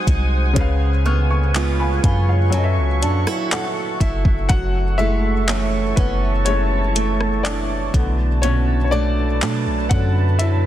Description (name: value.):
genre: contemporary R&B.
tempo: 61 BPM.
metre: 4/4.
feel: straight.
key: F# minor.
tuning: A4 = 439 Hz.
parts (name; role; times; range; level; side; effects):
warm baby grand piano; accompaniment; 0.0-10.7 s; B#2 to E#6; -24 LUFS; left 4 dB; none.
deep dark ambient pad; sustained chords; 0.0-10.7 s; A4 to D#6; -27 LUFS; equal; chorus, built-in reverb.
picked old ladder-braced acoustic guitar; arpeggios; 0.0-10.7 s; F#2 to A4; -25 LUFS; right 8 dB; digital delay.
soft 808-style bass; bass; 0.1-10.7 s; F#1 to B2; -19 LUFS; equal; none.
smooth R&B drum kit; drums; 0.1-10.6 s; handclaps, hi-hat, kick drum, rim click; -21 LUFS; equal; vintage 12-bit sampler grit.
room: digital ambience.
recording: dense, heavily limited modern master.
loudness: -16 LUFS.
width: side -12 dB against mid.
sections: 0.0-4.5 A section; 4.5-10.7 A section.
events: grand piano fill 2.5-4.5; grand piano solo 4.5-10.7.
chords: 0.0 G#7/B#; 0.6 C#7; 2.5 F#m7; 7.9 Bm7.